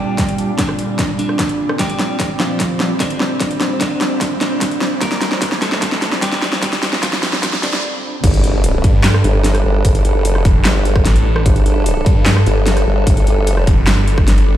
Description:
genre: heavy wobble dubstep.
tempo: 149 BPM.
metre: 4/4.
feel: half-time.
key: G minor.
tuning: A4 = 441 Hz.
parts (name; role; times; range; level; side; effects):
clean electric guitar; melody; 0.0-8.2 s; D3 to Bb4; -23 LUFS; right 1 dB; dub echo.
evolving wavetable pad; sustained chords; 0.0-14.6 s; Bb2 to A4; -23 LUFS; right 1 dB; chorus, built-in reverb, sidechain pumping.
airy breathy pad; texture; 0.0-7.8 s; G3 to A5; -29 LUFS; equal; chorus, sidechain pumping.
dubstep drum kit; drums; 0.2-14.5 s; crash cymbal, handclaps, hi-hat, rim click, snare drum; -19 LUFS; equal; none.
electronic kick drum; drums; 0.2-14.3 s; none; -16 LUFS; equal; none.
riser and impact; sound effects; 3.2-9.8 s; none; -25 LUFS; equal; none.
formant-sweep wobble bass; bass; 8.2-13.7 s; G1; -15 LUFS; equal; chorus, overdrive.
snarling distorted saw bass; bass; 8.8-14.6 s; F1 to G2; -14 LUFS; equal; distortion, overdrive.
room: light reverb.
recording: played on a big sound system in a bare room, stone room reverb, high-pass filter.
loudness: -13 LUFS.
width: side -12 dB against mid.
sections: 0.0-8.2 A section; 8.2-14.6 B section.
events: build-up 0.0-8.2; drum fill 0.0-7.8; filter sweep 0.0-8.2; riser 3.2-7.8; break 7.8-8.2; drop 8.2-14.6; impact 8.2-9.8.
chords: 0.0 Gmadd9; 8.2 Gsus2.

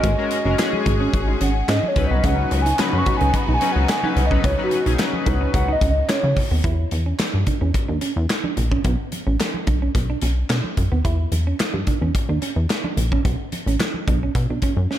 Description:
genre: early-eighties boogie funk.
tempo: 109 BPM.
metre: 4/4.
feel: straight.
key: unclear.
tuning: A4 = 441 Hz.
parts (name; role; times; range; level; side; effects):
hollow clarinet-like synth lead; melody; 0.0-6.4 s; F#4 to C#6; -24 LUFS; equal; chorus, tape echo.
chorused polysynth; accompaniment; 0.0-5.8 s; F#3 to B4; -24 LUFS; left 4 dB; none.
bright studio string section; sustained chords; 0.0-6.6 s; C#3 to G#4; -30 LUFS; equal; none.
clean electric guitar; riff; 0.0-15.0 s; G#3 to F#4; -28 LUFS; right 5 dB; lush chorus.
plucky analog bass; bass; 0.0-14.9 s; F#1 to C#3; -20 LUFS; equal; none.
modern studio drum kit; drums; 0.0-15.0 s; handclaps, hi-hat, kick drum, snare drum; -23 LUFS; equal; none.
congas; percussion; 0.6-14.8 s; none; -32 LUFS; right 3 dB; none.
room: light reverb, small room ambience.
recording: none.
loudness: -18 LUFS.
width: side -11 dB against mid.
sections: 0.0-6.6 A section; 6.6-15.0 B section.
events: soft synth lead solo 0.0-6.6.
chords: 0.0 G#9sus4; 2.0 C#9sus4; 6.6 E7(no3); 8.8 Bsus2; 11.0 E7(no3); 13.2 Bmadd9.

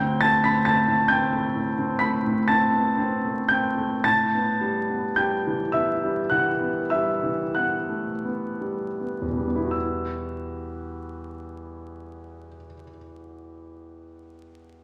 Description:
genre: classical, impressionist solo piano.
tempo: 26-46 BPM (dotted quarters).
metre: 9/8.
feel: rubato.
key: E minor.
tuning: A4 = 440 Hz.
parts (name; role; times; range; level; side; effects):
clear concert grand piano; solo; 0.0-14.8 s; D2 to B6; -25 LUFS; equal; none.
room: wet recital hall reverb, RT60 1.7 s.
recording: vinyl crackle.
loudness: -24 LUFS.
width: mono.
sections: 0.0-9.7 A section; 9.7-14.8 B section.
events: slowing down 0.0-9.7.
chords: 0.0 D7sus4; 4.0 Asus2; 9.7 Emadd9.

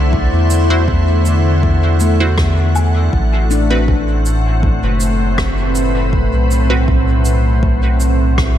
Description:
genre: ambient dub.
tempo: 80 BPM.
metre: 4/4.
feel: straight.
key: A dorian.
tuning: A4 = 440 Hz.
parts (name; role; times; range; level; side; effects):
soft additive organ-like pad; sustained chords; 0.0-8.6 s; A2 to F#5; -17 LUFS; left 1 dB; ensemble chorus, built-in reverb.
handpan; arpeggios; 0.0-5.2 s; A3 to D5; -26 LUFS; left 3 dB; dub echo.
soft dub sub bass; bass; 0.0-8.6 s; F#1 to E2; -14 LUFS; equal; tube saturation.
electronic kick drum; drums; 0.1-8.5 s; none; -18 LUFS; equal; none.
shaker, rim click and woodblock; drums; 0.5-8.5 s; none; -24 LUFS; equal; dub echo.
filtered dub chord stab; stabs; 0.7-6.8 s; C4 to C5; -24 LUFS; right 3 dB; phaser, cassette tape, dub echo.
room: light reverb.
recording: none.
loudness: -12 LUFS.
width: side -11 dB against mid.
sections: 0.0-8.6 A section.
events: none.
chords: 0.0 D9; 3.1 Am69.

